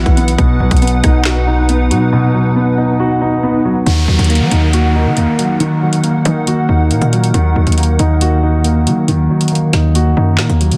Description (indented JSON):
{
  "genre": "hip hop, drill",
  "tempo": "138 BPM",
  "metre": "4/4",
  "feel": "half-time",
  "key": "Eb minor",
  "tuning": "A4 = 440 Hz",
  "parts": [
    { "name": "dark concert grand piano", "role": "accompaniment", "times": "0.0-10.8 s", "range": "B2 to F#5", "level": "-18 LUFS", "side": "equal", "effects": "low-pass filter" },
    { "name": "hollow soft pad", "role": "sustained chords", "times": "0.0-10.8 s", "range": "D#4 to F#5", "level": "-25 LUFS", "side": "equal", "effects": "ensemble chorus" },
    { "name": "mellow tine electric piano", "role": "arpeggios", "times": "0.0-10.8 s", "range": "Eb3 to D#4", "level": "-20 LUFS", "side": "equal", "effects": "low-pass filter, tape echo" },
    { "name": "hard-hitting 808-style bass", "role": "bass", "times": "0.0-10.8 s", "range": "B1 to Gb3", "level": "-16 LUFS", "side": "equal", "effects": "none" },
    { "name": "drill drum kit", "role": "drums", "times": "0.1-10.8 s", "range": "handclaps, hi-hat, kick drum, rim click, snare drum", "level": "-19 LUFS", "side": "equal", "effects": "vintage 12-bit sampler grit" },
    { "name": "downlifter", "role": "sound effects", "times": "3.9-7.3 s", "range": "none", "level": "-26 LUFS", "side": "equal", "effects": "none" }
  ],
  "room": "light reverb",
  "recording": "dense, heavily limited modern master",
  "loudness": "-13 LUFS",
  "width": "mono",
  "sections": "0.0-3.9 A section; 3.9-10.8 B section",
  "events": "drums muted 2.1-3.9",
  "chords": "0.4 B; 3.9 Ebm",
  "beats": "| 0.39 0.82 1.25 1.69 | 2.12 2.56 3.00 3.43 | 3.86 4.30 4.73 5.17 | 5.60 6.04 6.47 6.91 | 7.34 7.78 8.21 8.65 | 9.08 9.52 9.95 10.39"
}